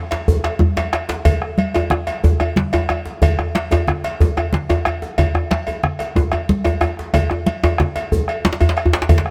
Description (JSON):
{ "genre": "west african traditional, West African drum ensemble", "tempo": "122 BPM (dotted quarters)", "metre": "12/8", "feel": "straight", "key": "none", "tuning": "none", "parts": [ { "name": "cowbell", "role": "percussion", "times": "0.1-9.2 s", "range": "none", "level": "-28 LUFS", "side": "equal", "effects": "none" }, { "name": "djembe", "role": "percussion", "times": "0.1-9.2 s", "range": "none", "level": "-26 LUFS", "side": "equal", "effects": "none" }, { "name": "djembe", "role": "percussion", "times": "0.1-9.3 s", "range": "none", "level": "-21 LUFS", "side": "equal", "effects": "none" }, { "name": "bombo", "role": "percussion", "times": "0.3-9.3 s", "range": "none", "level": "-22 LUFS", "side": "equal", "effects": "none" }, { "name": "congas", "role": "percussion", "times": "0.6-9.2 s", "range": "none", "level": "-24 LUFS", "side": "equal", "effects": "none" } ], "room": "light reverb", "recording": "none", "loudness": "-18 LUFS", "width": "mono", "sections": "0.0-9.3 A section", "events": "drum fill 6.5-7.1", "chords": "none" }